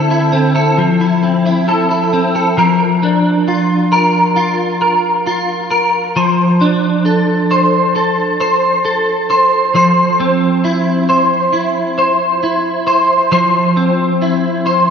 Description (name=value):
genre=dream pop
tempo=67 BPM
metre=4/4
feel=straight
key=F major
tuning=A4 = 444 Hz
part: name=clean electric guitar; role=solo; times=0.0-14.9 s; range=D3 to C5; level=-11 LUFS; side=equal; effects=ensemble chorus, analog delay
room=wet lush hall reverb, RT60 3.0 s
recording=dreamy mix soaked in reverb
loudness=-11 LUFS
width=side -7 dB against mid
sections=0.0-2.6 A section; 2.6-14.9 B section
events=none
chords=0.0 Dsus2; 0.8 Fmaj7; 2.6 Bb/F; 6.2 Dm7/F; 9.7 F5